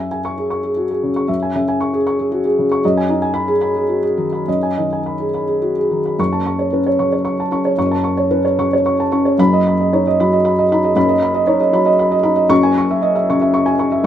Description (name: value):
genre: neoclassical minimalist piano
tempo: 101-118 BPM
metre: 3/4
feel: rubato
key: unclear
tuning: A4 = 441 Hz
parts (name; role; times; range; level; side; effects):
- felt-muted upright piano; solo; 0.0-14.1 s; F#1 to C#6; -14 LUFS; equal; none
room: light reverb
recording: minimal, uncompressed stereo recording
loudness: -14 LUFS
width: side -10 dB against mid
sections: 0.0-6.2 A section; 6.2-14.1 B section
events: none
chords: 0.0 C#m/F#; 2.8 G#m/F#; 6.2 F#m; 9.4 B/F#; 12.5 C#m/F#